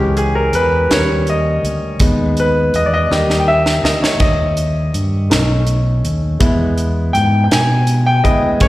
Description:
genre	slow gospel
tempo	54 BPM (dotted quarters)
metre	6/8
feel	straight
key	unclear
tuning	A4 = 439 Hz
part	clear baby grand piano	accompaniment	0.0-8.7 s	E3 to G#5	-16 LUFS	left 1 dB	slapback echo
part	fingered electric bass	bass	0.0-8.7 s	B1 to B2	-17 LUFS	equal	none
part	crisp fusion drum kit	drums	0.2-8.7 s	hi-hat, kick drum, snare drum, splash cymbal	-17 LUFS	equal	none
room	light reverb, studio ambience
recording	live gig heard through the venue's PA, recital hall reverb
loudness	-12 LUFS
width	side -16 dB against mid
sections	0.0-8.7 A section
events	grand piano solo 0.0-8.7; drum fill 3.1-4.2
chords	0.0 C#m; 0.9 D#7; 2.0 G#m/D#; 3.1 D#; 5.3 B7; 6.4 E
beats	0.91 | 2.01 3.11 | 4.21 5.31 | 6.41 7.51 | 8.61

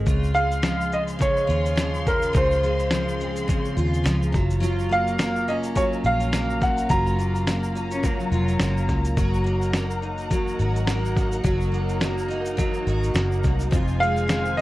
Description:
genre	acoustic pop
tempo	106 BPM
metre	4/4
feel	swing 55% on 16ths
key	Db major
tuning	A4 = 439 Hz
part	picked steel-string acoustic guitar	accompaniment	0.0-14.6 s	F2 to Gb4	-27 LUFS	equal	double-tracked left and right
part	vintage muted fingered electric bass	bass	0.0-14.6 s	F1 to Eb2	-25 LUFS	equal	none
part	dark studio string section	sustained chords	0.1-14.6 s	Db3 to C6	-33 LUFS	left 1 dB	none
part	dusty soul sampler-style drum kit	drums	0.1-14.6 s	kick drum, shaker, snare drum	-25 LUFS	equal	overdrive
part	tube shaker	percussion	0.1-14.6 s	none	-46 LUFS	right 3 dB	none
part	warm upright piano	melody	0.3-7.4, 14.0-14.6 s	Bb4 to Bb5	-24 LUFS	equal	ping-pong delay
part	warm cello	second line	7.9-9.0 s	Gb3 to Db4	-29 LUFS	left 2 dB	none
room	light reverb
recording	worn, warbling old tape, cassette tape, warbly pitch drift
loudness	-20 LUFS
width	side -16 dB against mid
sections	0.1-14.6 A section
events	none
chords	0.1 Dbmaj7; 4.3 Gbmaj7; 9.2 Ebm/Gb; 13.7 Fm7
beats	| 0.07 0.64 1.21 1.78 | 2.35 2.92 3.49 4.06 | 4.62 5.19 5.76 6.33 | 6.90 7.47 8.04 8.61 | 9.18 9.74 10.31 10.88 | 11.45 12.02 12.59 13.16 | 13.73 14.30

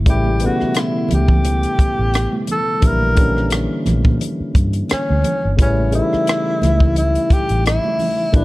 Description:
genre	lush 1970s-style soul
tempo	87 BPM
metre	4/4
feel	swing 54% on 16ths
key	unclear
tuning	A4 = 440 Hz
part	barky tine electric piano	accompaniment	0.0-8.4 s	B2 to E4	-21 LUFS	left 1 dB	overdrive
part	vintage muted fingered electric bass	bass	0.0-8.4 s	G1 to Bb2	-18 LUFS	equal	none
part	breathy tenor saxophone	melody	0.1-8.4 s	C#4 to Bb4	-20 LUFS	equal	none
part	compact cocktail drum kit	drums	0.1-8.4 s	hi-hat, kick drum, rim click	-16 LUFS	equal	none
part	congas	percussion	0.2-8.4 s	none	-26 LUFS	right 3 dB	none
room	little or no reverb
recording	dark, warm production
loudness	-14 LUFS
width	side -19 dB against mid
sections	0.0-8.4 A section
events	none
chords	0.1 A7; 2.8 Gm6/Bb; 5.6 A7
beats	| 0.06 0.75 1.44 2.13 | 2.82 3.51 4.20 4.89 | 5.58 6.27 6.96 7.65 | 8.34

